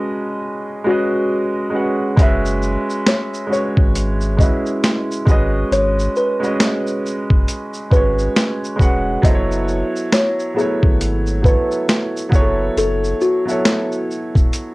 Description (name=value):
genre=lo-fi hip hop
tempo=68 BPM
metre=4/4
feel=swing 60% on 16ths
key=F# dorian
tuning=A4 = 438 Hz
part: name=warm upright piano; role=accompaniment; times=0.0-14.7 s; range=F#3 to A5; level=-20 LUFS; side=right 1 dB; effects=cassette tape, low-pass filter
part: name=kalimba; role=melody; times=0.9-13.9 s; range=F#4 to E5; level=-22 LUFS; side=left 1 dB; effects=low-pass filter, cassette tape
part: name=warm sub bass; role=bass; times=2.2-14.5 s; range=E1 to G#1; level=-21 LUFS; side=equal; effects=none
part: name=boom bap sampler-style drum kit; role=drums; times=2.2-14.7 s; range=finger snaps, hi-hat, kick drum, shaker, snare drum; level=-15 LUFS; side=equal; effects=cassette tape
room=moderate studio reverb, RT60 0.5 s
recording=home recording on cassette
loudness=-15 LUFS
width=side -22 dB against mid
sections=0.0-14.7 A section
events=none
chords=0.0 G#m7; 2.2 F#sus2; 5.3 G#m7; 9.2 F#m9; 12.3 F#m7